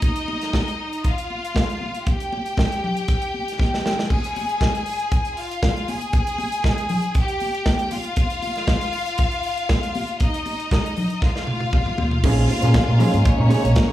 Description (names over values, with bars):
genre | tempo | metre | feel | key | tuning
disco | 118 BPM | 4/4 | straight | Bb dorian | A4 = 440 Hz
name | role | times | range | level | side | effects
bright studio string section | second line | 0.0-13.9 s | Db4 to Ab5 | -25 LUFS | left 2 dB | slapback echo
modern studio drum kit | drums | 0.0-13.9 s | crash cymbal, hi-hat, kick drum, snare drum, toms | -22 LUFS | equal | none
congas | percussion | 0.0-13.9 s | none | -28 LUFS | left 2 dB | none
electric guitar at the edge of break-up | accompaniment | 12.2-13.9 s | Db4 to C5 | -24 LUFS | right 3 dB | none
dark French horn section | sustained chords | 12.2-13.9 s | Db3 to Bb3 | -24 LUFS | equal | none
picked electric bass with an envelope filter | bass | 12.2-13.7 s | Bb1 to Bb2 | -17 LUFS | equal | none
room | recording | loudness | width
light reverb | live gig heard through the venue's PA, club ambience | -19 LUFS | side -14 dB against mid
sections
0.0-12.2 A section; 12.2-13.9 B section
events
drum fill 3.6-4.1, 11.2-12.2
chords
0.0 Ebsus2; 2.1 N.C.; 4.1 Fm; 5.9 N.C.; 12.2 Bbm9